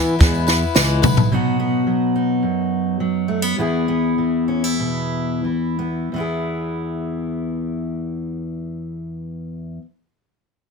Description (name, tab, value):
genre	indie folk with a building arrangement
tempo	87-109 BPM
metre	4/4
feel	straight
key	E major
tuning	A4 = 440 Hz
part	picked swing-style acoustic guitar	accompaniment	0.0-1.3 s	E3 to B4	-22 LUFS	left 7 dB	none
part	barky tine electric piano	bass	0.0-1.3 s	B1 to E3	-19 LUFS	equal	none
part	tambourine	percussion	0.1-1.2 s	none	-30 LUFS	right 11 dB	none
part	compact cocktail drum kit	drums	0.2-1.3 s	kick drum, snare drum, toms	-16 LUFS	equal	none
part	fingerpicked steel-string acoustic guitar	accompaniment	1.3-9.9 s	E2 to G#4	-20 LUFS	equal	none
room	light reverb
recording	dense, heavily limited modern master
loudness	-18 LUFS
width	side -5 dB against mid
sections	0.0-1.3 A section; 1.3-6.1 B section; 6.1-8.9 C section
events	drum fill 0.8-1.3; slowing down 1.3-6.1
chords	0.0 E; 1.3 B; 3.6 E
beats	0.21 0.76 | 1.30 1.86 2.42 2.99 | 3.57 4.17 4.79 5.44 | 6.11 6.80 7.50 8.19